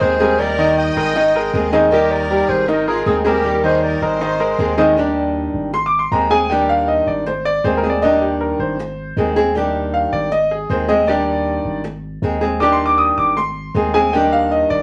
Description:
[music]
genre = latin, Cuban son and guajira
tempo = 157 BPM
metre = 4/4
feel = straight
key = Eb major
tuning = A4 = 440 Hz
[part]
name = mellow clarinet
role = melody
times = 0.0-4.8 s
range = Ab4 to G5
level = -22 LUFS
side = equal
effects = none
[part]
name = clear studio violin section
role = second line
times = 0.0-4.8 s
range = Eb4 to Eb5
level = -28 LUFS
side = equal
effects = none
[part]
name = nylon-string guitar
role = accompaniment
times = 0.0-14.8 s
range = Eb3 to Ab4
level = -21 LUFS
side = equal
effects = none
[part]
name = bright grand piano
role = arpeggios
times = 0.0-14.8 s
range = Eb3 to Eb6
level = -19 LUFS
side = equal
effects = none
[part]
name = punchy sub bass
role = bass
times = 0.0-14.8 s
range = Ab1 to Eb2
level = -28 LUFS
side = equal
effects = none
[sound]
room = wet studio reverb, RT60 0.5 s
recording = nothing above 10.5 kHz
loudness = -17 LUFS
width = mono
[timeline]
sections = 0.0-5.0 A section; 5.0-14.8 B section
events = grand piano solo 5.0-14.8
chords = 0.4 Ebmaj7; 1.2 Abadd9; 1.9 Ebmaj7; 2.7 Abadd9; 3.4 Eb; 4.2 Abadd9; 5.0 Ebmaj7; 5.7 Ab; 6.5 Ebmaj7; 7.3 Ab; 8.0 Ebmaj7; 8.8 Ab; 9.6 Ebmaj7; 10.3 Ab; 11.1 Ebmaj7; 11.8 Ab; 12.6 Ebmaj7; 13.4 Ab; 14.1 Ebmaj7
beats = 0.01 | 0.39 0.77 1.16 1.54 | 1.92 2.30 2.68 3.06 | 3.45 3.83 4.21 4.59 | 4.97 5.36 5.74 6.12 | 6.50 6.88 7.26 7.65 | 8.03 8.41 8.79 9.17 | 9.55 9.94 10.32 10.70 | 11.08 11.46 11.84 12.22 | 12.61 12.99 13.37 13.75 | 14.13 14.51

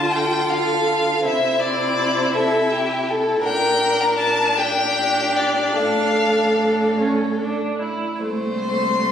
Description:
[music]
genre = classical, slow romantic movement for string quartet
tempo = 48-55 BPM (dotted quarters)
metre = 6/8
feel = rubato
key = D minor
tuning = A4 = 439 Hz
[part]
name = clear violin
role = melody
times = 0.0-9.1 s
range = D5 to C6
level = -21 LUFS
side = left 4 dB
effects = none
[part]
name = warm violin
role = second line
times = 0.0-9.1 s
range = F4 to C5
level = -21 LUFS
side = equal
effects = none
[part]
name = rich viola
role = accompaniment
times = 0.0-9.1 s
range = A3 to F4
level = -25 LUFS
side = right 1 dB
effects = none
[part]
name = rich cello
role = bass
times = 0.0-9.1 s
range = C2 to D3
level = -27 LUFS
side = right 4 dB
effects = none
[sound]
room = wet scoring stage reverb, RT60 2.0 s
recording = recorded on a phone in the room, studio reverb, compression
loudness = -17 LUFS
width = side -8 dB against mid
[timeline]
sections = 0.0-9.1 A section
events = none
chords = 0.0 Dm; 1.2 C69; 3.4 Gm/Bb; 5.8 Dm/A; 7.0 A; 8.2 Am/C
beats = 0.12 | 1.24 2.34 | 3.44 4.58 | 5.78 7.00 | 8.21

